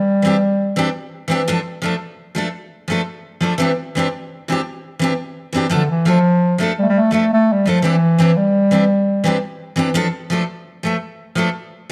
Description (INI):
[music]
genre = highlife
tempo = 113 BPM (dotted quarters)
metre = 12/8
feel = straight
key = D minor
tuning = A4 = 445 Hz
[part]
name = mellow bass clarinet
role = melody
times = 0.0-0.9, 5.7-9.4 s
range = D3 to A3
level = -16 LUFS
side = equal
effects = none
[part]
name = picked steel-string acoustic guitar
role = accompaniment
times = 0.2-11.9 s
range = E3 to A4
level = -22 LUFS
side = equal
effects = none
[sound]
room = moderate echo chamber reverb, RT60 1.6 s, small room ambience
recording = none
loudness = -18 LUFS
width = mono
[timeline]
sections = 0.0-11.9 A section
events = none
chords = 0.0 Cadd9; 1.5 Dm; 3.6 Cadd9; 5.7 Dm; 7.8 Cadd9; 10.0 Dm